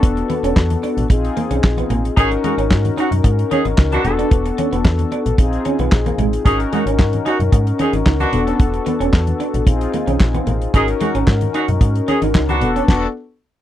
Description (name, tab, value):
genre	early-eighties boogie funk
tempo	112 BPM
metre	4/4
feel	straight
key	G# dorian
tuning	A4 = 440 Hz
part	mellow synth brass	accompaniment	0.0-13.1 s	B3 to A#4	-21 LUFS	left 4 dB	chorus
part	metallic FM bass	bass	0.0-13.1 s	E1 to G#2	-20 LUFS	equal	none
part	damped 70s drum kit	drums	0.0-13.1 s	crash cymbal, handclaps, hi-hat, kick drum, snare drum	-15 LUFS	equal	none
part	congas	percussion	0.0-12.7 s	none	-27 LUFS	left 4 dB	none
part	semi-hollow electric guitar	riff	0.2-12.8 s	G#3 to D#4	-23 LUFS	right 6 dB	lush chorus
part	mellow horn section	second line	2.2-12.7 s	B3 to G#4	-19 LUFS	right 1 dB	none
room	little or no reverb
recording	dry, close 1970s-style studio recording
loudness	-14 LUFS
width	side -12 dB against mid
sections	0.0-13.6 A section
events	band accent 12.9-13.6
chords	0.0 E9sus4; 1.1 A#9sus4; 2.2 G#9sus4; 4.0 E9sus4; 5.4 A#9sus4; 6.5 G#9sus4; 8.3 E9sus4; 9.7 A#9sus4; 10.7 G#9sus4; 12.6 E9sus4